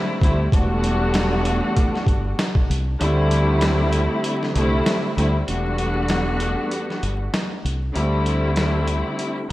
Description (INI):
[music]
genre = hip hop, boom-bap hip-hop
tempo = 97 BPM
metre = 4/4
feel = swing 58% on 16ths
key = E minor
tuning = A4 = 440 Hz
[part]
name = muted studio string section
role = accompaniment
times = 0.0-9.5 s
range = E2 to F#4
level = -22 LUFS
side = equal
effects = cassette tape, high-pass filter, low-pass filter
[part]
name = deep dub fingered electric bass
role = bass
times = 0.2-9.5 s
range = E1 to D2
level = -22 LUFS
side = equal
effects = none
[part]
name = boom bap sampler-style drum kit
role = drums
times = 0.2-9.4 s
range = hi-hat, kick drum, snare drum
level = -24 LUFS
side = equal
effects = vintage 12-bit sampler grit
[sound]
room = moderate plate reverb, RT60 2.3 s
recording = dreamy mix soaked in reverb, vinyl crackle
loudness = -18 LUFS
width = side -17 dB against mid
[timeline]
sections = 0.0-5.5 A section; 5.5-9.5 A section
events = kick muted 3.0-5.5; break 5.5-9.5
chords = 0.0 D7sus4; 0.5 Em11; 3.0 D7sus4; 5.5 Em11; 7.9 D7sus4